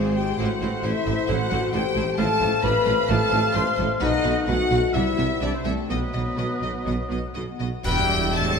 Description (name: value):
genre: classical, dramatic, fast romantic movement for symphony orchestra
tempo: 117-135 BPM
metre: 4/4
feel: rubato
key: unclear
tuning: A4 = 436 Hz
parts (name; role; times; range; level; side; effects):
- clear symphonic violin section; melody; 0.0-8.6 s; B4 to A5; -31 LUFS; left 5 dB; none
- warm cor anglais; second line; 0.0-8.6 s; C5 to F#5; -30 LUFS; right 1 dB; none
- mellow bassoon; accompaniment; 0.0-8.6 s; F#3 to A3; -35 LUFS; right 1 dB; none
- rich symphonic viola section; accompaniment; 0.0-8.6 s; G3 to Ab4; -34 LUFS; right 2 dB; none
- concert harp; arpeggios; 0.0-8.6 s; Ab2 to C6; -34 LUFS; left 8 dB; none
- rich symphonic double bass section; bass; 0.0-8.6 s; Ab1 to E2; -29 LUFS; right 3 dB; none
- warm chamber cello section; bass; 0.0-8.6 s; G2 to C3; -30 LUFS; right 3 dB; none
- warm tuba; bass; 0.0-8.6 s; E1 to C2; -31 LUFS; right 3 dB; none
- large flute ensemble; second line; 0.2-8.6 s; G4 to C6; -31 LUFS; right 1 dB; none
- warm symphonic violin section; second line; 0.2-7.4 s; A4 to C6; -31 LUFS; left 3 dB; none
- mellow French horn section; sustained chords; 0.2-8.0 s; E3 to C5; -27 LUFS; left 6 dB; none
- warm trumpet section; stabs; 7.8-8.0 s; B4; -32 LUFS; right 2 dB; none
- clash cymbals and concert bass drum; percussion; 7.8-8.6 s; none; -30 LUFS; left 1 dB; none
room: wet concert hall reverb, RT60 2.3 s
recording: none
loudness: -20 LUFS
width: side -6 dB against mid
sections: 0.0-7.8 A section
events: band accent 7.8-8.4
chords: 0.4 Am; 2.2 F/A; 4.0 B7; 4.9 C; 5.9 B; 7.8 Em